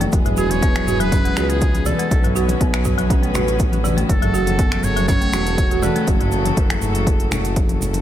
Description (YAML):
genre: afro house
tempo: 121 BPM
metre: 4/4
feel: straight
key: F# minor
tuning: A4 = 441 Hz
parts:
  - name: rich chamber string section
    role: sustained chords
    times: 0.0-8.0 s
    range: C#3 to B4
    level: -25 LUFS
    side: left 1 dB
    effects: sidechain pumping
  - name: folk marimba with hard mallets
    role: arpeggios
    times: 0.0-6.1 s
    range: E3 to F#4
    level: -22 LUFS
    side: right 2 dB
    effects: sidechain pumping, dub echo
  - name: smooth synth bass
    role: bass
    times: 0.0-8.0 s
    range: E1 to C#2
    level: -23 LUFS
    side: equal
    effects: sidechain pumping
  - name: deep house drum kit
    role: drums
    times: 0.0-8.0 s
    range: finger snaps, hi-hat, toms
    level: -26 LUFS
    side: equal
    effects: none
  - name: congas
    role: percussion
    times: 0.0-8.0 s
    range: none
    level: -29 LUFS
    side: left 4 dB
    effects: none
  - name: maracas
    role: percussion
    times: 0.0-8.0 s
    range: none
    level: -35 LUFS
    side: right 6 dB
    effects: none
  - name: electronic kick drum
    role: drums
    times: 0.1-7.7 s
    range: none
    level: -19 LUFS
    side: equal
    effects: none
  - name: trumpet with metal mute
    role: melody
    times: 0.4-6.1 s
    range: G#4 to C#5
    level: -27 LUFS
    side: equal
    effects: dub echo
room: studio ambience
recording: none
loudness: -16 LUFS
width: side -11 dB against mid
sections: 0.0-8.0 A section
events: none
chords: 0.1 E; 2.1 Bmadd9; 4.1 F#m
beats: | 0.13 0.62 1.12 1.62 | 2.11 2.61 3.10 3.60 | 4.09 4.59 5.09 5.58 | 6.08 6.58 7.07 7.57